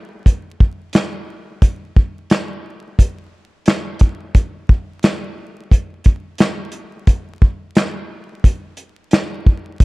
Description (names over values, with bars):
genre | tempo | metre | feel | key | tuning
hip hop | 88 BPM | 4/4 | swing 61% on 16ths | none | none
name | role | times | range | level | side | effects
warm soul drum kit | drums | 0.3-9.8 s | handclaps, hi-hat, kick drum, snare drum | -12 LUFS | equal | none
room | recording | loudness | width
light reverb | vinyl crackle | -15 LUFS | side -24 dB against mid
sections
0.0-9.8 A section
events
none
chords
none